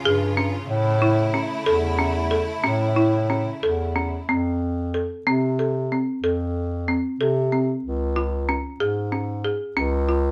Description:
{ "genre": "contemporary instrumental, chamber music in an uneven meter", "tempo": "186 BPM (eighths)", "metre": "11/8", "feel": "straight", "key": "unclear", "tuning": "A4 = 439 Hz", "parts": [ { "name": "bright studio string section", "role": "sustained chords", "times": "0.0-4.2 s", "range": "Db3 to Ab4", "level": "-31 LUFS", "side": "equal", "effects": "none" }, { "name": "warm bass clarinet", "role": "bass", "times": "0.0-10.3 s", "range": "Db2 to C3", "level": "-26 LUFS", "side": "equal", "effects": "none" }, { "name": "folk marimba with hard mallets", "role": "arpeggios", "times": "0.1-10.3 s", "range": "C4 to A4", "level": "-26 LUFS", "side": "equal", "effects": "none" } ], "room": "light reverb", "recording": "none", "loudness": "-23 LUFS", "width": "mono", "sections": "0.0-4.3 A section; 4.3-10.3 B section", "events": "none", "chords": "0.0 Db; 0.7 A; 4.3 F; 7.8 Db" }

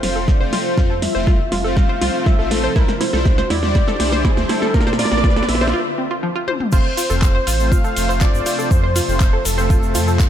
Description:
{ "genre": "progressive house", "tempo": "121 BPM", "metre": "4/4", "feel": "straight", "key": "F major", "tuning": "A4 = 441 Hz", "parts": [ { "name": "wide unison lead", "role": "melody", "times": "0.0-10.3 s", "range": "A4 to F5", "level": "-24 LUFS", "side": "equal", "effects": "sidechain pumping, dub echo" }, { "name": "shimmering ambient pad", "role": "sustained chords", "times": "0.0-10.3 s", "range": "C3 to E5", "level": "-28 LUFS", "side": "equal", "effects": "chorus, built-in reverb, sidechain pumping" }, { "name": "analog pluck", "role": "arpeggios", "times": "0.0-10.1 s", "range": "F3 to C6", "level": "-25 LUFS", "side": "equal", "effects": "chorus, sidechain pumping, dub echo" }, { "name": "soft supersaw", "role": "stabs", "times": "0.0-10.3 s", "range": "G3 to D5", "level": "-25 LUFS", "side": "left 2 dB", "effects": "sidechain pumping, dub echo" }, { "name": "round analog bass", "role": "bass", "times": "0.0-10.2 s", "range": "F1 to Bb2", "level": "-22 LUFS", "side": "equal", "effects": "sidechain pumping" }, { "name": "pop drum kit", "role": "drums", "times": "0.0-10.3 s", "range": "crash cymbal, handclaps, hi-hat, ride cymbal, snare drum, toms", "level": "-23 LUFS", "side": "right 1 dB", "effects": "studio reverb" }, { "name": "riser", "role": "sound effects", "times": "1.0-5.7 s", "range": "none", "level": "-31 LUFS", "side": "right 1 dB", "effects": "none" }, { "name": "electronic kick drum", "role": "drums", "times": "0.3-10.3 s", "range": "none", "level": "-16 LUFS", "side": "equal", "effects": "studio reverb" }, { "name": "tube shaker", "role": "percussion", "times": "6.7-10.3 s", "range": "none", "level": "-29 LUFS", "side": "left 7 dB", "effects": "none" } ], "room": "light reverb, digital ambience", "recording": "faint mains hum", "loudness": "-15 LUFS", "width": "side -10 dB against mid", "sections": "0.0-6.7 A section; 6.7-10.3 B section", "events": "build-up 0.0-6.7; drum fill 0.0-5.7, 6.5; filter sweep on ambient pad 0.0-6.7; filter sweep on analog synth lead 0.0-6.7; riser 1.0-5.7; break 5.7-6.7; drop 6.7-10.3", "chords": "0.0 F; 2.8 Cadd9; 4.7 Bb; 6.7 F" }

